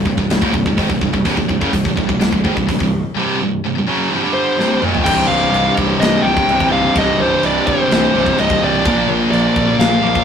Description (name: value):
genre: heavy metal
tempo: 126 BPM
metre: 4/4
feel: straight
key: C minor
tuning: A4 = 440 Hz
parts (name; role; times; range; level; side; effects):
- high-gain distorted guitar; riff; 0.0-10.2 s; C2 to Bb3; -18 LUFS; right 5 dB; distortion
- scooped high-gain guitar; riff; 0.0-10.2 s; C2 to Bb3; -21 LUFS; left 8 dB; distortion
- fuzz picked electric bass; bass; 0.0-10.2 s; C1 to Bb1; -24 LUFS; equal; overdrive
- tight metal drum kit; drums; 0.1-10.2 s; china cymbal, crash cymbal, hi-hat, kick drum, snare drum, toms; -19 LUFS; left 1 dB; none
- high-gain lead guitar; melody; 4.3-10.2 s; C5 to G5; -17 LUFS; left 1 dB; distortion
- warm chamber string section; sustained chords; 5.1-10.2 s; none; barely audible; none; none
room: moderate small room reverb, RT60 0.5 s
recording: rough rehearsal-room recording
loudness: -13 LUFS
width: side -7 dB against mid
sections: 0.0-5.1 A section; 5.1-10.2 B section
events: drum fill 4.6-5.1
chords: 0.0 Cm; 8.8 Bb